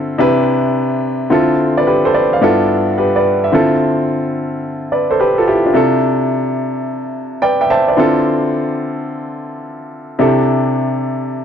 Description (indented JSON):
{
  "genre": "R&B",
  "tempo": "108 BPM",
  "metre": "4/4",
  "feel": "swing 66% on 16ths",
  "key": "D dorian",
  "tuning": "A4 = 442 Hz",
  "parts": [
    { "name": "clear baby grand piano", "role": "solo", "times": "0.0-11.4 s", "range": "G2 to A5", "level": "-13 LUFS", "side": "equal", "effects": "none" }
  ],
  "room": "light reverb",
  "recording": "dry, close 1970s-style studio recording",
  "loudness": "-12 LUFS",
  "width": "side -8 dB against mid",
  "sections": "0.0-3.5 A section; 3.5-11.4 B section",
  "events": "grand piano fill 7.1-8.0",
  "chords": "0.2 Cmaj7; 1.3 Dm7; 2.4 G13; 3.5 Dm7; 5.8 C69; 8.0 Dm7; 10.2 C69",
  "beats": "0.20 0.75 | 1.31 1.86 2.42 2.98 | 3.53 4.09 4.64 5.20 | 5.75 6.31 6.86 7.42 | 7.97 8.53 9.09 9.64 | 10.20 10.75 11.31"
}